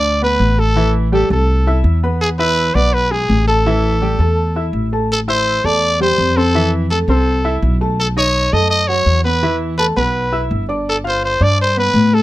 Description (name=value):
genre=latin, salsa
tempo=166 BPM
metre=4/4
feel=straight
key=A minor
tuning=A4 = 438 Hz
part: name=growling trumpet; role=melody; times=0.0-12.2 s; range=G#4 to D#5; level=-16 LUFS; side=equal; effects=none
part: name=clear baby grand piano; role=accompaniment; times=0.0-12.2 s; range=E3 to F6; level=-20 LUFS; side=equal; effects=none
part: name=upright bass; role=bass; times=0.0-12.2 s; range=G1 to A2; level=-16 LUFS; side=equal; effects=none
room=little or no reverb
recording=close, detailed microphones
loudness=-13 LUFS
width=side -16 dB against mid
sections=0.0-5.1 A section; 5.1-12.2 A section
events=none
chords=0.0 Gadd9 (rootless); 0.8 Am7; 2.2 E; 3.7 A5; 5.1 Am7; 6.5 Fmaj7; 8.0 B7; 9.4 E7sus4; 10.9 G9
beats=0.04 0.41 | 0.77 1.13 1.49 1.85 | 2.21 2.57 2.94 3.30 | 3.66 4.02 4.38 4.74 | 5.10 5.46 5.82 6.18 | 6.54 6.90 7.26 7.62 | 7.99 8.35 8.71 9.07 | 9.43 9.79 10.15 10.51 | 10.87 11.23 11.59 11.95